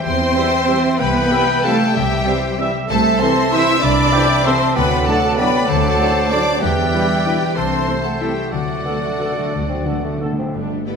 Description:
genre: classical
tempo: 170-207 BPM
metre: 3/4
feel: rubato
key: unclear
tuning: A4 = 441 Hz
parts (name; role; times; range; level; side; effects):
- warm symphonic violin section; melody; 0.0-10.9 s; F#5 to E6; -23 LUFS; left 2 dB; none
- bright oboe; second line; 0.0-10.4 s; C5 to G5; -29 LUFS; right 1 dB; none
- rich symphonic violin section; second line; 0.0-11.0 s; F#4 to E5; -25 LUFS; left 3 dB; none
- warm clarinet; second line; 0.0-10.3 s; A4 to G5; -26 LUFS; left 2 dB; none
- mellow bassoon; accompaniment; 0.0-10.5 s; E3 to D4; -28 LUFS; right 3 dB; none
- concert harp; arpeggios; 0.0-11.0 s; G2 to E5; -24 LUFS; left 7 dB; none
- mellow hollow silver concert flute; second line; 0.1-10.2 s; D5 to C6; -25 LUFS; equal; none
- rich symphonic viola section; accompaniment; 0.1-11.0 s; D4 to E5; -25 LUFS; right 2 dB; none
- warm symphonic cello section; bass; 0.1-11.0 s; F#3 to E4; -23 LUFS; right 3 dB; none
- warm symphonic double bass section; bass; 0.1-10.8 s; G1 to E2; -25 LUFS; right 4 dB; none
- dark French horn section; sustained chords; 0.4-11.0 s; A3 to B4; -29 LUFS; left 3 dB; none
- mellow trombone section; sustained chords; 0.4-10.3 s; A2 to A3; -29 LUFS; right 5 dB; none
- bright trumpet section; stabs; 0.4-10.3 s; A4 to E5; -31 LUFS; equal; none
- timpani; percussion; 4.8-5.2, 8.5-10.5 s; D3; -27 LUFS; equal; none
room: wet scoring stage reverb, RT60 1.9 s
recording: none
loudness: -14 LUFS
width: side -6 dB against mid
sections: 0.0-10.5 A section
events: timpani fill 8.5-10.5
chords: 0.0 C/E; 1.0 C; 2.9 Am/C; 4.8 D; 6.6 Em7; 7.6 Am/C; 8.5 D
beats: | 0.05 0.37 0.69 | 1.00 1.31 1.65 | 1.96 2.27 2.59 | 2.90 3.21 3.53 | 3.83 4.14 4.46 | 4.76 5.07 5.39 | 5.69 6.00 6.32 | 6.62 6.93 7.26 | 7.57 7.88 8.21 | 8.53 8.86 9.21 | 9.53 9.86 10.21 | 10.54 10.86

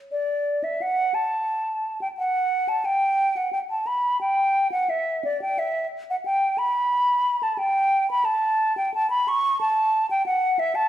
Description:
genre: classical, baroque-style fantasia for unaccompanied flute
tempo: 89 BPM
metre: 4/4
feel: rubato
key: unclear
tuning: A4 = 439 Hz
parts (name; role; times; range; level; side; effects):
- mellow hollow silver concert flute; solo; 0.1-10.9 s; D5 to C#6; -21 LUFS; equal; none
room: wet stone room reverb, RT60 1.3 s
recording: heard from further back in the room, vinyl crackle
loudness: -21 LUFS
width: side -12 dB against mid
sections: 0.1-10.9 A section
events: none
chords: none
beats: | 0.10 0.80 1.48 2.17 | 2.85 3.52 4.20 4.89 | 5.58 6.25 6.92 7.59 | 8.26 8.93 9.60 10.26

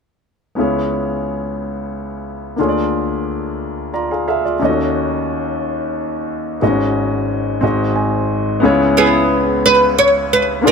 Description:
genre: gospel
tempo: 60 BPM (dotted quarters)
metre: 6/8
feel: straight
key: C# minor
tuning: A4 = 444 Hz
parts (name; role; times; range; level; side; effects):
- clear grand piano; accompaniment; 0.6-10.7 s; G#1 to A#5; -16 LUFS; left 1 dB; none
- oud; melody; 9.0-10.7 s; B3 to C#5; -12 LUFS; right 2 dB; slapback echo
room: light reverb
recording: none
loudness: -15 LUFS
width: side -5 dB against mid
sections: 0.6-8.6 A section; 8.6-10.7 B section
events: grand piano fill 3.6-4.6, 7.6-8.6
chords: 0.6 C#m7; 2.6 A#7/D; 4.6 D#m7b5; 6.6 G#7sus4; 7.6 G#7; 8.6 C#m7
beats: | 0.57 1.58 | 2.58 3.59 | 4.60 5.61 | 6.62 7.62 | 8.63 9.64 | 10.64

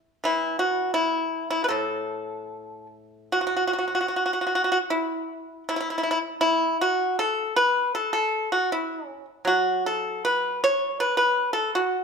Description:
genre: chinese traditional, Chinese solo plucked strings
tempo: 74-84 BPM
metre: 2/4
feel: rubato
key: A gong mode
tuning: A4 = 436 Hz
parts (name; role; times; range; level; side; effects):
- pipa; solo; 0.2-12.0 s; A2 to C#5; -22 LUFS; equal; none
room: moderate recital hall reverb, RT60 1.4 s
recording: none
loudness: -22 LUFS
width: side -5 dB against mid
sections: 0.0-3.3 A section; 3.3-12.0 B section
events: none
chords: none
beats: | 0.25 0.98 | 1.73 2.52 | 3.33 4.12 | 4.89 5.67 | 6.42 7.17 | 7.93 8.70 | 9.47 10.24 | 10.99 11.72

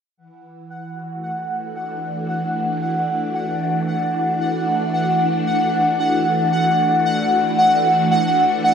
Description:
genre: ambient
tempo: free time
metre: none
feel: none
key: unclear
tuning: A4 = 440 Hz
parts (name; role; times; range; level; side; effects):
- phased string machine; sustained chords; 0.2-8.7 s; E3 to F#4; -22 LUFS; right 1 dB; ensemble chorus, phaser
- pulsing gated texture; texture; 0.8-8.7 s; F#5; -19 LUFS; equal; chorus, built-in reverb
room: wet huge ambient reverb, RT60 8.0 s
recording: dark, warm production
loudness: -17 LUFS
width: side -7 dB against mid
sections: 0.2-8.7 A section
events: fade-in on string machine 0.2-8.7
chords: 0.2 E9sus4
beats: free time

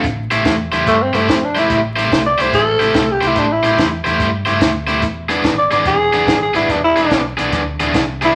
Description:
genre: electric blues shuffle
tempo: 144 BPM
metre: 4/4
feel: swing 66% on 8ths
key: A minor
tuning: A4 = 442 Hz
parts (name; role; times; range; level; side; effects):
- growling tenor saxophone; melody; 0.0-8.3 s; A3 to D5; -17 LUFS; equal; none
- cranked stack guitar; riff; 0.0-8.3 s; E3 to C5; -19 LUFS; equal; overdrive
- fingered electric bass; bass; 0.0-8.3 s; E1 to G2; -28 LUFS; equal; none
- compact cocktail drum kit; drums; 0.0-8.3 s; hi-hat, kick drum, snare drum; -23 LUFS; equal; none
room: wet studio reverb, RT60 0.7 s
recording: vinyl crackle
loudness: -15 LUFS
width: mono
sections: 0.0-8.3 A section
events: tenor saxophone solo 0.0-8.3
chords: 0.0 Am7; 5.0 E7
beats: | 0.04 0.45 0.87 1.28 | 1.70 2.12 2.53 2.95 | 3.36 3.78 4.19 4.61 | 5.02 5.44 5.86 6.27 | 6.69 7.10 7.52 7.93 | 8.35

